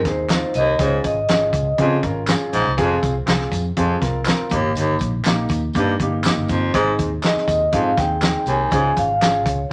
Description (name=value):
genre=uptempo 1960s-style soul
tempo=121 BPM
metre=4/4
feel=straight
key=Ab major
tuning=A4 = 441 Hz
part: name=vintage muted fingered electric bass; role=bass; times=0.0-9.7 s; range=F1 to Db3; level=-27 LUFS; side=equal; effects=none
part: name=vibraphone with soft mallets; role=melody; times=0.1-2.0, 7.2-9.7 s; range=C5 to Ab5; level=-22 LUFS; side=equal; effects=none
part: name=clear upright piano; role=accompaniment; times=0.1-9.6 s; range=Bb3 to Bb4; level=-26 LUFS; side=equal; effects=none
part: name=warm soul drum kit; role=drums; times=0.1-9.6 s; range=hi-hat, kick drum, snare drum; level=-25 LUFS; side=equal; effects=none
part: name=tambourine and handclaps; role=percussion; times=0.1-9.6 s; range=none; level=-34 LUFS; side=equal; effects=none
part: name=raspy baritone saxophone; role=riff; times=0.6-8.9 s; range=Eb2 to Ab2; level=-25 LUFS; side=equal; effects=none
room=moderate club reverb, RT60 0.8 s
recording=none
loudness=-19 LUFS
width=mono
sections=0.0-9.7 A section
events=none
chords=0.0 Ab; 0.8 Db; 2.8 Fm; 4.5 Eb/G; 6.7 Ab; 8.7 Db